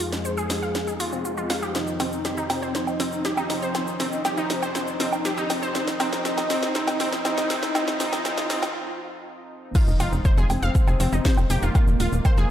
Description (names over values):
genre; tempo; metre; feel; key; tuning
melodic techno; 120 BPM; 4/4; straight; F minor; A4 = 440 Hz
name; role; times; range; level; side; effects
mellow synth brass; melody; 0.0-12.5 s; Bb3 to Ab4; -29 LUFS; equal; chorus, sidechain pumping, tape echo
warm analog pad; sustained chords; 0.0-12.5 s; F2 to Eb4; -34 LUFS; right 1 dB; chorus, sidechain pumping
wide unison pluck; arpeggios; 0.0-12.5 s; C4 to F6; -28 LUFS; equal; sidechain pumping, tape echo
techno drum kit; drums; 0.0-12.5 s; crash cymbal, hi-hat, shaker, snare drum, woodblock; -29 LUFS; equal; high-pass filter on snare, high-pass filter on perc, high-pass filter on hats, high-pass filter on cymbals, high-pass filter on room
riser and impact; sound effects; 0.0-11.8 s; none; -34 LUFS; equal; none
electronic kick drum; drums; 9.8-12.3 s; none; -19 LUFS; equal; none
tight sequencer bass; bass; 9.9-12.5 s; Eb1 to F1; -24 LUFS; equal; sidechain pumping
room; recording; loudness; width
wet lush hall reverb, RT60 1.6 s; dark, warm production, high-pass filter; -21 LUFS; side -11 dB against mid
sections
0.0-9.8 A section; 9.8-12.5 B section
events
build-up 0.0-9.8; drum fill 0.0-8.8; filter sweep on analog polysynth 0.0-9.8; break 8.8-9.8; drop 9.8-12.5; impact 9.8-11.8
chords
0.0 Fm7; 1.8 Cm/F; 9.8 Fm7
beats
0.25 0.75 1.25 | 1.75 2.25 2.75 3.25 | 3.75 4.25 4.75 5.25 | 5.75 6.25 6.75 7.25 | 7.75 8.25 8.75 9.25 | 9.75 10.25 10.75 11.25 | 11.75 12.25